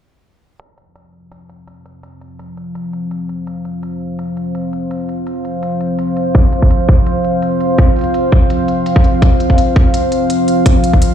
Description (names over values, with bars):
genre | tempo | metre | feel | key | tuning
half-time drum and bass | 167 BPM | 4/4 | swing 54% on 16ths, half-time | unclear | A4 = 440 Hz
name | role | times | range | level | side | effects
deep dark ambient pad | sustained chords | 2.4-11.1 s | F3 to F5 | -16 LUFS | equal | chorus, built-in reverb, vintage 12-bit sampler grit, sidechain pumping
electronic hi-hat | drums | 0.6-11.1 s | none | -33 LUFS | equal | overdrive
electronic kick drum | drums | 6.3-11.0 s | none | -9 LUFS | equal | none
room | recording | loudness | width
light reverb | played on a big sound system in a bare room, large studio reverb, low-pass filter | -12 LUFS | side -9 dB against mid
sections
0.6-11.1 A section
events
filter sweep 0.6-11.1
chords
0.6 F5